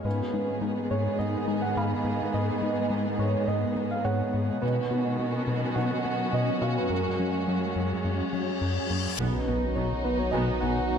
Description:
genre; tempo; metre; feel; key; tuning
cinematic, hybrid orchestral and electronic film score; 105 BPM; 4/4; straight; unclear; A4 = 439 Hz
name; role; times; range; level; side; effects
warm studio viola section; accompaniment; 0.0-10.7 s; D#3 to B3; -36 LUFS; right 2 dB; none
ethereal airy pad; sustained chords; 0.0-11.0 s; F#3 to D#5; -33 LUFS; right 1 dB; ensemble chorus, built-in reverb
string-like resonator pluck; arpeggios; 0.0-10.8 s; F#3 to F#4; -41 LUFS; left 3 dB; none
round analog bass; riff; 0.0-11.0 s; F#2 to B3; -31 LUFS; left 3 dB; none
felt-muted upright piano; texture; 0.0-11.0 s; F#4 to E#6; -40 LUFS; left 1 dB; ping-pong delay
soft struck synth lead; melody; 0.1-11.0 s; A#4 to F#5; -33 LUFS; right 3 dB; chorus
rich chamber violin section; second line; 0.1-11.0 s; B3 to G#4; -35 LUFS; left 1 dB; none
dark symphonic cello section; bass; 0.1-10.7 s; F#2 to B2; -34 LUFS; right 1 dB; none
reverse cymbal and impact; sound effects; 7.6-11.0 s; none; -37 LUFS; left 4 dB; none
warm symphonic violin section; melody; 9.2-11.0 s; F#4; -38 LUFS; left 4 dB; none
clear trombone section; sustained chords; 9.2-11.0 s; D#3 to F#3; -36 LUFS; right 4 dB; none
mellow French horn section; sustained chords; 9.2-11.0 s; B3 to F#4; -35 LUFS; left 4 dB; none
mellow tuba; bass; 9.2-10.7 s; B1; -37 LUFS; right 6 dB; none
rich symphonic double bass section; bass; 9.2-10.7 s; B1; -38 LUFS; right 5 dB; none
saturated sub bass; bass; 9.2-11.0 s; B1; -33 LUFS; equal; none
room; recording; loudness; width
moderate scoring stage reverb, RT60 1.9 s; close, detailed microphones; -25 LUFS; side -7 dB against mid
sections
0.0-9.2 A section; 9.2-11.0 B section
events
reverse cymbal 7.6-9.2; impact 9.2-11.0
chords
0.1 G#m; 4.6 Badd9; 6.9 F#add9; 9.2 B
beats
| 0.05 0.62 1.19 1.77 | 2.34 2.91 3.48 4.05 | 4.62 5.19 5.77 6.34 | 6.91 7.48 8.05 8.62 | 9.19 9.77 10.34 10.91

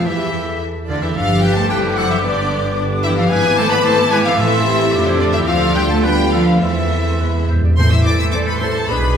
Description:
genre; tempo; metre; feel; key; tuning
quick classical-period movement for symphony orchestra; 101-114 BPM; 2/4; rubato; A minor from 3.3 s; A4 = 441 Hz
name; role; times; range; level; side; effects
warm studio violin section; melody; 0.0-9.2 s; C5 to E6; -23 LUFS; left 4 dB; none
bright flute section; second line; 0.0-9.1 s; A4 to D6; -26 LUFS; left 1 dB; none
rich studio violin section; second line; 0.0-9.0 s; C4 to B4; -27 LUFS; left 3 dB; none
warm oboe; second line; 0.0-9.2 s; E4 to D5; -27 LUFS; right 2 dB; none
rich studio viola section; accompaniment; 0.0-9.0 s; D3 to E4; -25 LUFS; right 1 dB; none
warm bassoon; accompaniment; 0.0-9.2 s; D3 to G#3; -29 LUFS; equal; none
warm French horn section; sustained chords; 0.0-9.2 s; G#3 to C5; -22 LUFS; left 3 dB; none
mellow trumpet section; stabs; 0.0-9.2 s; A4 to B5; -24 LUFS; equal; none
rich studio double bass section; bass; 0.0-9.2 s; F#1 to F2; -22 LUFS; right 1 dB; none
warm studio cello section; bass; 0.0-9.2 s; C3 to A4; -22 LUFS; right 1 dB; none
mellow clarinet; second line; 0.1-9.1 s; D4 to E5; -28 LUFS; left 2 dB; none
timpani; percussion; 4.4-4.9, 7.2-8.6 s; E2 to A2; -18 LUFS; equal; none
room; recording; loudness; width
wet recital hall reverb, RT60 1.6 s; heard from further back in the room; -13 LUFS; side -8 dB against mid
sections
0.0-7.8 A section; 7.8-9.2 B section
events
timpani fill 7.2-7.8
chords
0.1 Dsus24; 1.2 G; 1.7 D7/F#; 2.2 G; 3.3 E7/G#; 4.4 Am; 4.9 Dm/F; 5.5 Dm7; 6.0 Bdim/D; 6.6 Am/E; 7.2 E; 7.8 Am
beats
| 0.06 0.61 | 1.16 1.70 | 2.23 2.76 | 3.30 3.84 | 4.38 4.93 | 5.48 6.04 | 6.62 7.21 | 7.78 8.34 | 8.89

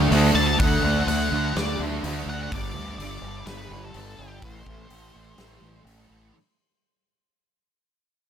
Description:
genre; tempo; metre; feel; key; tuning
rock, shoegaze and dream pop; 125 BPM; 4/4; straight; A minor; A4 = 441 Hz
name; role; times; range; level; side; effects
thick fuzz guitar; riff; 0.0-6.3 s; G2 to D4; -25 LUFS; right 1 dB; distortion, ensemble chorus
growling fingered electric bass; bass; 0.0-6.3 s; G1 to D2; -26 LUFS; equal; overdrive
huge arena drum kit; drums; 0.1-6.0 s; hi-hat, kick drum, snare drum; -29 LUFS; left 1 dB; none
octave-fuzz lead guitar; melody; 0.4-5.8 s; G4 to A5; -29 LUFS; left 2 dB; distortion, tape echo
room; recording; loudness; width
light reverb, studio ambience; none; -20 LUFS; side -8 dB against mid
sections
0.0-6.3 A section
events
fade-out 0.0-6.3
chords
0.0 D; 2.5 G5; 4.4 Am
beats
0.11 | 0.59 1.07 1.55 2.03 | 2.51 2.99 3.47 3.95 | 4.43 4.91 5.38 5.86

